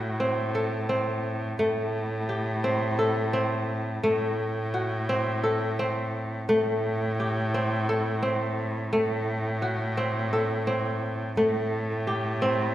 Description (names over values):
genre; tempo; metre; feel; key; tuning
contemporary instrumental, chamber music in an uneven meter; 172 BPM (eighths); 7/8; straight; A dorian; A4 = 440 Hz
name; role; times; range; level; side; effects
kora; arpeggios; 0.0-12.7 s; A3 to A4; -27 LUFS; equal; none
clear cello; bass; 0.0-12.7 s; A2; -28 LUFS; equal; none
room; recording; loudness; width
wet recital hall reverb, RT60 1.8 s; none; -24 LUFS; side -13 dB against mid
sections
0.0-12.7 A section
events
none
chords
0.0 Am6; 1.6 Am7; 4.0 Am6; 6.5 Am7; 8.9 Am6; 11.4 Am7